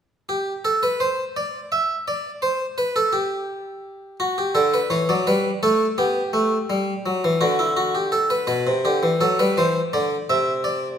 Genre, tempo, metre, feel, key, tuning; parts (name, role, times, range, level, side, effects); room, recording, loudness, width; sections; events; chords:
classical, baroque-style two-part invention for harpsichord; 56 BPM (dotted quarters); 6/8; straight; G major; A4 = 440 Hz
harpsichord; solo; 0.3-11.0 s; B2 to E5; -19 LUFS; equal
wet recital hall reverb, RT60 1.4 s; recorded in a church or concert hall; -19 LUFS; side -8 dB against mid
0.0-8.5 A section; 8.5-11.0 B section
0.0 N.C.; 4.2 D; 5.3 G; 6.3 A5; 7.4 D; 8.5 G/B; 9.6 C